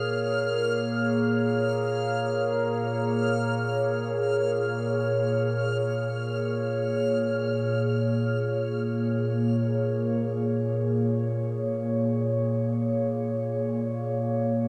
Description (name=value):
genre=ambient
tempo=free time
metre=none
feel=none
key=Bb minor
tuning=A4 = 441 Hz
part: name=warbly tape-like pad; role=sustained chords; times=0.0-14.7 s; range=Bb2 to Db5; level=-28 LUFS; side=equal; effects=chorus, built-in reverb, shimmer reverb
part: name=analog drone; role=drone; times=0.0-14.7 s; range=Bb3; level=-34 LUFS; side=equal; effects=chorus
part: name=backwards swelling texture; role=texture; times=0.0-7.7 s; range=F6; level=-38 LUFS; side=equal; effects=built-in reverb, shimmer reverb
room=wet huge ambient reverb, RT60 7.3 s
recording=cassette tape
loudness=-27 LUFS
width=mono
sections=0.0-7.6 A section; 7.6-14.7 B section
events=none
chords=0.0 Bbm7